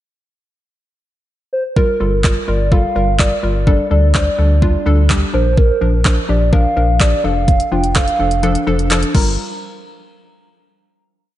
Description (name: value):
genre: dance-pop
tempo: 126 BPM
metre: 4/4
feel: straight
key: G minor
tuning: A4 = 440 Hz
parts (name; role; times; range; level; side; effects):
- hollow clarinet-like synth lead; melody; 1.5-9.4 s; Bb4 to Bb5; -19 LUFS; right 1 dB; chorus, tape echo
- hollow square pluck; accompaniment; 1.8-9.4 s; F3 to C5; -20 LUFS; left 2 dB; chorus
- pop drum kit; drums; 1.8-9.3 s; crash cymbal, handclaps, hi-hat, kick drum; -16 LUFS; equal; overdrive
- sub bass with octave; bass; 2.0-9.4 s; F1 to D2; -16 LUFS; equal; sidechain pumping
room: light reverb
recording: nothing above 10.5 kHz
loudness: -12 LUFS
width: side -14 dB against mid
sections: 0.0-1.8 pickup bar; 1.8-9.4 verse; 9.4-11.3 final hit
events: kick muted 8.4-9.4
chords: 0.0 N.C.; 1.8 Gm7; 3.7 Dsus4; 5.3 Bb; 7.2 F6; 9.1 Gm7; 9.4 N.C.